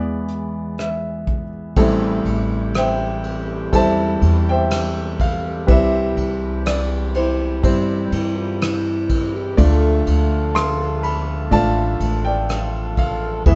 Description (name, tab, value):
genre	acoustic folk-pop ballad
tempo	62 BPM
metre	4/4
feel	straight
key	A minor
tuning	A4 = 439 Hz
part	warm grand piano	melody	0.0-13.6 s	A1 to C6	-23 LUFS	equal	none
part	upright bass	bass	0.0-13.6 s	A1 to G2	-24 LUFS	equal	none
part	soft brush drum kit	drums	0.3-13.6 s	hi-hat, kick drum, ride cymbal, rim click	-26 LUFS	equal	none
part	hand-pumped harmonium	sustained chords	1.8-13.6 s	B2 to A4	-32 LUFS	equal	none
part	dark French horn	second line	8.1-10.3 s	E4 to A4	-26 LUFS	equal	none
room	light reverb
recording	band playing live in one room, nothing above 8.0 kHz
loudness	-19 LUFS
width	mono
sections	0.0-1.8 A section; 1.8-13.6 B section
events	none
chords	0.0 E; 1.8 Am7; 5.7 Cmaj7; 9.6 Dm